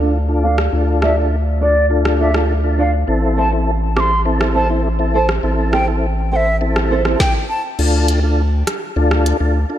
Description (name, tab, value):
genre	dancehall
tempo	102 BPM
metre	4/4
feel	straight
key	unclear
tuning	A4 = 439 Hz
part	tonewheel organ	accompaniment	0.0-9.8 s	C4 to A4	-20 LUFS	left 1 dB	chorus vibrato, slow rotary speaker, sidechain pumping, low-pass filter
part	flamenco guitar	arpeggios	0.0-7.2 s	C4 to D5	-24 LUFS	right 4 dB	lush chorus, low-pass filter, ping-pong delay
part	round analog bass	bass	0.0-9.7 s	A1 to D2	-17 LUFS	equal	none
part	wooden flute	melody	0.4-7.6 s	D5 to D6	-21 LUFS	equal	low-pass filter, ping-pong delay
part	afro-pop drum kit	drums	0.6-9.4 s	crash cymbal, hi-hat, kick drum, rim click, snare drum	-21 LUFS	right 1 dB	overdrive, gated reverb
room	light reverb, digital ambience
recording	bright 1980s-style digital production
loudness	-14 LUFS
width	side -11 dB against mid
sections	0.0-7.8 A section; 7.8-9.8 B section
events	filter sweep 0.0-7.8; kick muted 7.8-9.8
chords	0.0 Dm; 3.1 Am; 7.8 Dm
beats	0.14 | 0.73 1.32 1.91 2.49 | 3.08 3.67 4.26 4.85 | 5.43 6.02 6.61 7.20 | 7.79 8.38 8.96 9.55